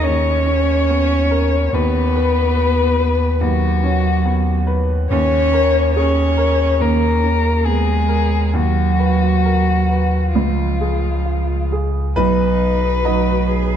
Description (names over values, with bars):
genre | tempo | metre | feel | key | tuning
neoclassical piano and strings | 66-72 BPM | 4/4 | rubato | unclear | A4 = 440 Hz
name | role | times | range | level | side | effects
muted violin | melody | 0.0-13.8 s | F4 to Db5 | -20 LUFS | left 5 dB | none
muted cello | second line | 0.0-13.8 s | F3 to Ab4 | -22 LUFS | right 5 dB | none
warm upright piano | accompaniment | 0.0-13.8 s | B1 to D#5 | -22 LUFS | right 1 dB | none
punchy sub bass | bass | 0.0-13.8 s | B1 to Eb2 | -18 LUFS | equal | none
room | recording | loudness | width
moderate concert hall reverb, RT60 2.3 s | none | -14 LUFS | side -9 dB against mid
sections
0.0-12.2 A section; 12.2-13.8 B section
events
none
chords
0.0 Eb7sus4; 1.7 Badd9/D#; 5.1 Bbm/Eb; 8.6 B/D#; 10.3 Db; 12.2 B